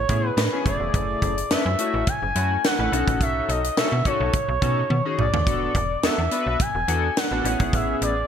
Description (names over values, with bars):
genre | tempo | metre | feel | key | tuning
early-eighties boogie funk | 106 BPM | 4/4 | straight | F# minor | A4 = 440 Hz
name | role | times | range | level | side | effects
expressive portamento lead | melody | 0.0-8.3 s | C#5 to G#5 | -25 LUFS | equal | chorus, ping-pong delay
slap-like FM bass | bass | 0.0-8.2 s | E1 to B2 | -26 LUFS | equal | none
chorused polysynth | accompaniment | 0.1-8.2 s | C#3 to B4 | -27 LUFS | left 3 dB | none
tight funk drum kit | drums | 0.1-8.2 s | hi-hat, kick drum, snare drum, toms | -25 LUFS | equal | gated reverb
room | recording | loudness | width
moderate plate reverb, RT60 1.6 s, small room ambience | bright 1980s-style digital production | -20 LUFS | side -8 dB against mid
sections
0.0-8.3 A section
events
drum fill 4.9-5.5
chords
0.0 Amaj9; 0.7 F#m9; 2.9 B9; 5.5 E7sus4; 7.5 Amaj9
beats
0.38 | 0.94 1.51 2.07 2.64 | 3.21 3.77 4.34 4.90 | 5.47 6.04 6.60 7.17 | 7.73